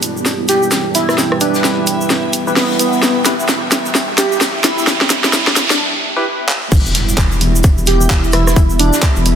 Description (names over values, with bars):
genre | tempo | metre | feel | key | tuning
bass house | 130 BPM | 4/4 | swing 60% on 16ths | E minor | A4 = 440 Hz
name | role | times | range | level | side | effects
dark analog pad | sustained chords | 0.0-9.4 s | G3 to E4 | -23 LUFS | right 3 dB | chorus, sidechain pumping
vowel-sweep wobble bass | bass | 0.0-9.4 s | E1 | -19 LUFS | equal | chorus, tube saturation, sidechain pumping, high-pass filter
garage drum kit | drums | 0.0-9.4 s | crash cymbal, handclaps, hi-hat, rim click, snare drum | -16 LUFS | equal | overdrive
loose indie drum kit | drums | 0.0-9.4 s | hi-hat, shaker, snare drum | -25 LUFS | left 2 dB | sidechain pumping on hats, high-pass filter on hats, high-pass filter on snare, sidechain pumping on perc, high-pass filter on perc, high-pass filter on room
tube shaker | percussion | 0.0-9.2 s | none | -25 LUFS | right 1 dB | none
riser and impact | sound effects | 0.9-8.6 s | none | -22 LUFS | right 1 dB | none
granular cloud pad | texture | 0.0-9.4 s | B3 to A5 | -25 LUFS | equal | built-in reverb, sidechain pumping
airy dreamy lead | melody | 0.5-8.9 s | B3 to G4 | -18 LUFS | right 1 dB | chorus, dub echo
percussive organ stab | stabs | 1.4-3.3, 6.2-6.3 s | E4 to B4 | -22 LUFS | left 1 dB | lush chorus, sidechain pumping, dub echo
electronic kick drum | drums | 6.7-9.1 s | none | -12 LUFS | equal | overdrive
room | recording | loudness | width
moderate lush hall reverb, RT60 2.2 s | dense, heavily limited modern master, high-pass filter | -11 LUFS | side -8 dB against mid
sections
0.0-6.7 A section; 6.7-9.4 B section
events
build-up 0.0-6.7; drum fill 0.0-5.8, 6.5; filter sweep on synth stab 0.0-6.7; filter sweep on analog synth pad 0.0-6.7; filter sweep 0.0-6.7; riser 0.9-5.8; break 5.8-6.7; drop 6.7-9.4; impact 6.7-8.6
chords
0.0 Em